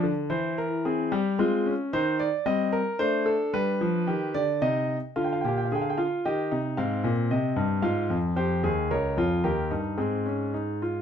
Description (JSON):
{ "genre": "classical, baroque-style 3-part fugue for grand piano", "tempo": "111 BPM", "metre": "3/4", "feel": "straight", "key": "unclear", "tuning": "A4 = 440 Hz", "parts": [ { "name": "warm concert grand piano", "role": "solo", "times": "0.0-11.0 s", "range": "Db2 to G5", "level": "-24 LUFS", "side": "equal", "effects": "none" } ], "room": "light reverb", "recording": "dark, warm production", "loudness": "-24 LUFS", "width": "side -8 dB against mid", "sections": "0.0-5.2 A section; 5.2-11.0 B section", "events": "none", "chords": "0.3 C/E; 1.4 Fm/Ab; 1.9 Cm/Eb; 3.0 D5/A; 3.5 G; 4.6 Cm; 5.2 Bb7; 6.2 Eb; 6.8 Abmaj7; 7.8 Fm; 8.9 Bbm/Db; 9.4 Eb; 10.0 Ab", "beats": "| 0.32 0.85 1.39 | 1.93 2.46 3.00 | 3.54 4.08 4.62 | 5.17 5.71 6.24 | 6.78 7.30 7.84 | 8.37 8.91 9.45 | 9.99 10.55" }